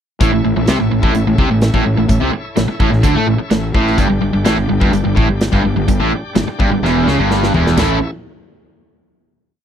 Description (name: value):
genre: classic rock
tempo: 127 BPM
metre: 4/4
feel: straight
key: A mixolydian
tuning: A4 = 440 Hz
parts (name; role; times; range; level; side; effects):
- bright tonewheel organ; sustained chords; 0.2-8.1 s; D4 to G5; -30 LUFS; left 2 dB; slow rotary speaker, overdrive
- biting overdriven guitar; riff; 0.2-8.0 s; E2 to A4; -17 LUFS; right 7 dB; none
- distorted electric guitar; riff; 0.2-8.0 s; E2 to E4; -19 LUFS; left 12 dB; overdrive
- fuzz fingered electric bass; bass; 0.2-8.0 s; E1 to A2; -19 LUFS; equal; overdrive
- big rock drum kit; drums; 0.2-7.9 s; crash cymbal, hi-hat, kick drum, snare drum, toms; -18 LUFS; equal; none
room: little or no reverb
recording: dry, close 1970s-style studio recording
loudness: -12 LUFS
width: side -9 dB against mid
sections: 0.2-7.8 riff; 7.8-9.6 final chord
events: drum fill 6.8-7.8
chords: 0.2 A; 4.0 G5; 7.8 A